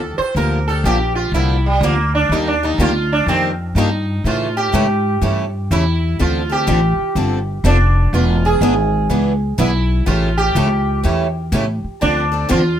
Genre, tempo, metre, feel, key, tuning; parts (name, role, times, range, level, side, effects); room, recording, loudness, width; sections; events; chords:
acoustic string swing (jazz manouche); 124 BPM; 4/4; swing 64% on 8ths; D minor; A4 = 439 Hz
sitar; second line; 0.0-12.8 s; G3 to C5; -19 LUFS; right 2 dB
upright bass; bass; 0.0-12.8 s; E1 to A2; -17 LUFS; equal
picked acoustic archtop guitar; accompaniment; 0.4-12.6 s; D3 to B4; -24 LUFS; right 6 dB
picked steel-string acoustic guitar; accompaniment; 0.4-12.6 s; C#3 to A4; -22 LUFS; left 5 dB
light reverb; close, detailed microphones; -14 LUFS; side -10 dB against mid
0.0-12.8 A section
sitar solo 0.0-12.8
0.4 Gm7; 2.3 Ebmaj7; 4.2 A7; 6.2 Dm7; 8.1 E7; 10.1 A7; 12.0 Dm7